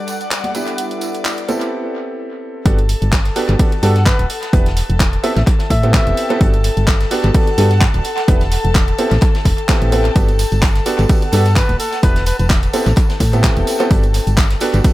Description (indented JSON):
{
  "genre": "piano house",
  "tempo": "128 BPM",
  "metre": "4/4",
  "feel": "swing 55% on 16ths",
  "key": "G major",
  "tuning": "A4 = 444 Hz",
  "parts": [
    { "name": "dark chamber violin section", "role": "sustained chords", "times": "0.0-14.9 s", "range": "A4 to D6", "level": "-26 LUFS", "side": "left 3 dB", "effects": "sidechain pumping" },
    { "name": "bright upright piano", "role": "riff", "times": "0.0-14.9 s", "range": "B3 to B4", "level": "-21 LUFS", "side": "right 2 dB", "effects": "sidechain pumping, analog delay" },
    { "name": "airy breathy pad", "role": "texture", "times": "0.0-14.9 s", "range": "G3 to G5", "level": "-29 LUFS", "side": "right 1 dB", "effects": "chorus, phaser, sidechain pumping" },
    { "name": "house drum kit", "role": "drums", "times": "0.1-14.9 s", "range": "handclaps, hi-hat", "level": "-23 LUFS", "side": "equal", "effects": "analog delay" },
    { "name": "tambourine and congas", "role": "percussion", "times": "0.1-1.7, 10.2-14.9 s", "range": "none", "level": "-32 LUFS", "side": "right 3 dB", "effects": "none" },
    { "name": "solid FM bass", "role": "bass", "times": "2.7-14.8 s", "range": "D1 to A2", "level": "-15 LUFS", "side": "equal", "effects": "sidechain pumping" },
    { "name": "electronic kick drum", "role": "drums", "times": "2.7-14.9 s", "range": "none", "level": "-14 LUFS", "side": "equal", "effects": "overdrive" },
    { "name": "vintage brush drum kit", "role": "drums", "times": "2.7-14.9 s", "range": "hi-hat, snare drum", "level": "-33 LUFS", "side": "left 2 dB", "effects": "none" },
    { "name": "trumpet with bucket mute", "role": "melody", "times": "3.8-6.4, 11.3-12.5 s", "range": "A4 to E5", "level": "-24 LUFS", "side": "left 1 dB", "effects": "analog delay" }
  ],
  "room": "small room ambience",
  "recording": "echo-heavy mix",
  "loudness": "-12 LUFS",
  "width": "side -16 dB against mid",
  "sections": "0.0-2.7 A section; 2.7-14.9 B section",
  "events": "filter sweep on drum 0.0-2.7; break 1.7-2.7; drop 2.7-14.9",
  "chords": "0.0 Gmaj9; 0.5 Em7; 1.5 Am9; 2.7 Gmaj9; 4.3 E5; 5.2 Am9; 6.4 Gmaj9; 8.0 E5; 9.0 Am9; 10.2 Gmaj9; 11.8 E5; 12.7 Am9; 13.9 Gmaj9",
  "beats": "0.31 | 0.78 1.25 1.72 2.19 | 2.66 3.13 3.60 4.06 | 4.53 5.00 5.47 5.94 | 6.41 6.88 7.34 7.81 | 8.28 8.75 9.22 9.69 | 10.16 10.63 11.10 11.56 | 12.03 12.50 12.97 13.44 | 13.91 14.38 14.85"
}